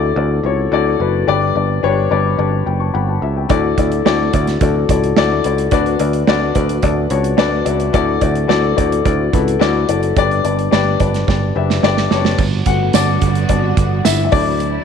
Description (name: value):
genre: piano-driven pop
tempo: 108 BPM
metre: 4/4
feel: straight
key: unclear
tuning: A4 = 438 Hz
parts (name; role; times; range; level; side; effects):
- warm baby grand piano; accompaniment; 0.0-14.8 s; G2 to C#6; -16 LUFS; left 8 dB; none
- picked electric bass; bass; 0.0-14.8 s; F#1 to D2; -18 LUFS; right 2 dB; none
- modern studio drum kit; drums; 3.5-14.7 s; crash cymbal, hi-hat, kick drum, snare drum; -19 LUFS; right 5 dB; none
- warm studio string section; sustained chords; 12.4-14.8 s; D3 to F#4; -24 LUFS; right 14 dB; none
- tambourine; percussion; 12.9-14.2 s; none; -25 LUFS; right 16 dB; none
room: moderate plate reverb, RT60 1.9 s, small room ambience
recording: 1960s-style stereo with parts hard left and right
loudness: -13 LUFS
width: side -7 dB against mid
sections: 0.0-12.4 A section; 12.4-14.8 B section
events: grand piano fill 1.8-3.5, 6.8-7.9; drum fill 11.3-12.4; grand piano solo 12.4-14.8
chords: 0.0 Dadd9; 1.3 G; 3.5 Dadd9; 5.7 Bm/D; 7.9 Dadd9; 10.2 G; 12.4 Gmaj7; 14.3 Dadd9